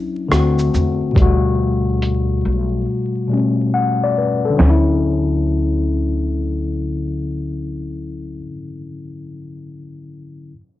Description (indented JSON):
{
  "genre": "lo-fi hip hop",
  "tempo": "70 BPM",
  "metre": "4/4",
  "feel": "swing 65% on 16ths",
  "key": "D major",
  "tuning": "A4 = 436 Hz",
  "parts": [
    { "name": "tine electric piano", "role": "accompaniment", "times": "0.0-10.5 s", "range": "B2 to F#5", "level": "-19 LUFS", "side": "left 3 dB", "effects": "medium stereo tremolo, low-pass filter" },
    { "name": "upright bass", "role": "bass", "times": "0.3-8.4 s", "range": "B1 to E2", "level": "-20 LUFS", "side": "equal", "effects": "tube saturation" },
    { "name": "lo-fi sampler-style drum kit", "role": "drums", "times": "0.3-4.9 s", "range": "hi-hat, kick drum, rim click, shaker, snare drum, toms", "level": "-17 LUFS", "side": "right 1 dB", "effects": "cassette tape" }
  ],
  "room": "moderate studio reverb, RT60 0.7 s",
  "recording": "home recording on cassette, vinyl crackle, low-pass filter",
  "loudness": "-16 LUFS",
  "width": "side -14 dB against mid",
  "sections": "0.0-4.6 A section; 4.6-8.0 B section",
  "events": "filter sweep 0.0-4.6; drums muted 2.9-4.6",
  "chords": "0.3 D7; 1.2 Gmaj9; 4.6 Dmaj9"
}